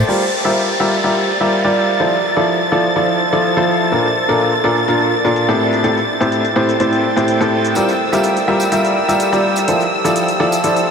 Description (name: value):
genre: piano house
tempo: 125 BPM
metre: 4/4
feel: straight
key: G dorian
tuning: A4 = 439 Hz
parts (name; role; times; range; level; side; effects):
- rich studio violin section; sustained chords; 0.0-10.9 s; E6 to A6; -21 LUFS; left 1 dB; none
- bright upright piano; riff; 0.0-10.9 s; A2 to E5; -15 LUFS; equal; low-pass filter, analog delay
- airy breathy pad; texture; 0.0-10.9 s; E4 to Bb5; -20 LUFS; right 1 dB; chorus
- electronic hi-hat and shaker; drums; 0.1-10.9 s; none; -32 LUFS; equal; overdrive, low-pass filter on hats, low-pass filter on snare, low-pass filter on perc, low-pass filter on room
- gated 80s drum kit; drums; 0.1-10.9 s; none; barely audible; none; none
- downlifter; sound effects; 0.1-3.9 s; none; -27 LUFS; equal; none
- tambourine; percussion; 7.8-10.9 s; none; -33 LUFS; right 1 dB; none
room: wet huge ambient reverb, RT60 7.4 s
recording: dreamy mix soaked in reverb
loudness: -13 LUFS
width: side -6 dB against mid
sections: 0.1-10.9 A section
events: none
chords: 0.1 Gm7; 2.0 Fmaj7; 3.9 Bbmaj7; 5.6 Am7; 7.8 Gm7; 9.7 Fmaj7